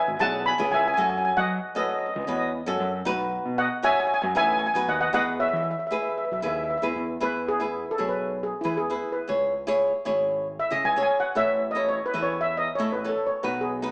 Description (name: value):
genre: calypso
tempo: 116 BPM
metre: 4/4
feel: straight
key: E major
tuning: A4 = 441 Hz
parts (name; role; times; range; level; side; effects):
- steel pan; melody; 0.0-13.9 s; E4 to B5; -27 LUFS; equal; none
- growling fingered electric bass; bass; 0.1-13.9 s; G#1 to F#3; -35 LUFS; equal; overdrive
- flamenco guitar; accompaniment; 0.2-13.9 s; C#4 to E5; -30 LUFS; equal; none
room: wet large studio reverb, RT60 1.1 s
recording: band playing live in one room, small speaker sound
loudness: -25 LUFS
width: mono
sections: 0.0-7.2 A section; 7.2-13.9 B section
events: steel pan solo 7.2-13.9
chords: 0.0 C#m7; 1.0 F#m7; 3.1 B7; 5.1 Emaj7; 7.2 E; 9.3 C#m; 11.4 A